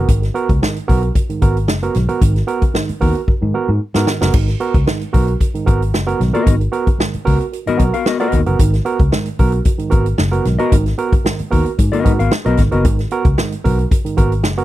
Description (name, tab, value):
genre	funk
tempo	113 BPM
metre	4/4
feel	straight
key	G# minor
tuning	A4 = 439 Hz
part	barky tine electric piano	stabs	0.0-14.6 s	G#2 to A#4	-20 LUFS	right 5 dB	overdrive, slapback echo
part	vintage muted fingered electric bass	bass	0.0-14.6 s	F#1 to G#2	-17 LUFS	equal	none
part	swinging big-band drum kit	drums	0.1-14.6 s	crash cymbal, hi-hat, kick drum, snare drum	-16 LUFS	equal	none
part	mellow electric guitar	accompaniment	6.3-12.8 s	B3 to E#5	-17 LUFS	left 7 dB	none
room	little or no reverb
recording	dry, close 1970s-style studio recording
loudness	-13 LUFS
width	side -14 dB against mid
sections	0.0-4.3 A section; 4.3-14.6 B section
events	drum fill 3.3-4.3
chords	0.0 G#m9